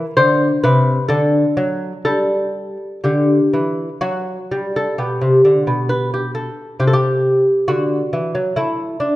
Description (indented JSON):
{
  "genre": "classical, baroque-style dance for lute",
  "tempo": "60-69 BPM",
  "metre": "3/4",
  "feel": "rubato",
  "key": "G major",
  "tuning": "A4 = 441 Hz",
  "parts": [
    { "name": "lute", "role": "solo", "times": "0.0-9.2 s", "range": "B2 to C5", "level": "-15 LUFS", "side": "equal", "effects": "none" }
  ],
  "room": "wet recital hall reverb, RT60 1.5 s",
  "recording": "dark, warm production, nothing above 10.9 kHz",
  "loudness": "-15 LUFS",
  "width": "side -16 dB against mid",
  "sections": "0.0-5.0 A section; 5.0-9.2 A section",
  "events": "none",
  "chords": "0.2 Csus2; 1.1 D; 2.1 G5; 5.0 G/B; 6.8 N.C.; 7.7 D"
}